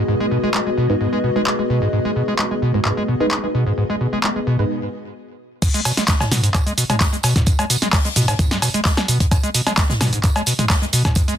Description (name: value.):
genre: acid house.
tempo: 130 BPM.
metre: 4/4.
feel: straight.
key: G# minor.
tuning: A4 = 440 Hz.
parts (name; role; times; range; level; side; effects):
string machine, full ensemble; sustained chords; 0.0-4.7 s; B3 to D#5; -26 LUFS; left 1 dB; ensemble chorus, sidechain pumping.
overdriven acid bass; riff; 0.0-11.3 s; G#2 to G#3; -21 LUFS; equal; wide subtle chorus, sidechain pumping, digital delay.
warbly tape-like pad; texture; 0.0-4.7 s; G#3 to D#5; -25 LUFS; left 2 dB; chorus, built-in reverb, sidechain pumping.
punchy analog drum machine; drums; 0.5-11.4 s; cowbell, crash cymbal, handclaps, hi-hat, shaker, snare drum, toms; -19 LUFS; equal; none.
deep mellow chord stab; stabs; 0.9-4.7 s; G#3 to B4; -25 LUFS; right 3 dB; chorus, digital delay.
electronic kick drum; drums; 5.6-11.3 s; none; -18 LUFS; equal; none.
jazz brush drum kit; drums; 5.6-11.3 s; hi-hat, snare drum, tambourine; -29 LUFS; right 2 dB; sidechain pumping on hats, high-pass filter on hats, high-pass filter on snare, sidechain pumping on perc, high-pass filter on perc, high-pass filter on room.
room: moderate small room ambience, RT60 0.5 s.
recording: dense, heavily limited modern master.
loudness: -16 LUFS.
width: side -9 dB against mid.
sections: 0.0-5.6 A section; 5.6-11.4 B section.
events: filter sweep on string machine 0.0-5.6; filter sweep on synth stab 0.0-5.6; break 4.7-5.6; drop 5.6-11.4.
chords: 0.0 G#m.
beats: | 0.08 0.55 1.01 1.47 | 1.93 2.39 2.85 3.31 | 3.78 4.24 4.70 5.16 | 5.62 6.08 6.54 7.01 | 7.47 7.93 8.39 8.85 | 9.31 9.78 10.24 10.70 | 11.16.